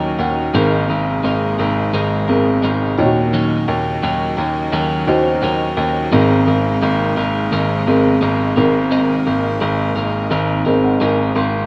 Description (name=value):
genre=pop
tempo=86 BPM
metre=4/4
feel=straight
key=Ab mixolydian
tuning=A4 = 440 Hz
part: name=felt-muted upright piano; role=accompaniment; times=0.0-11.7 s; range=Ab2 to C6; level=-21 LUFS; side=equal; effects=none
part: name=lush unison pad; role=sustained chords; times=0.0-11.7 s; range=C3 to Eb4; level=-29 LUFS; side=equal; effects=chorus
part: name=twelve-string electric guitar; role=riff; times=0.0-11.7 s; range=Ab2 to Bb4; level=-24 LUFS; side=equal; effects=spring reverb
part: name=clear baby grand piano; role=bass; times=0.0-11.6 s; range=Ab1 to Eb2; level=-21 LUFS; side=equal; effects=none
room=moderate plate reverb, RT60 2.8 s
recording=rough home demo mix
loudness=-17 LUFS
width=mono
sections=0.0-11.7 A section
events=felt piano fill 0.0-0.5, 10.3-11.7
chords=0.0 Ebm7; 0.5 Abadd9; 3.0 Ebm7; 6.1 Abadd9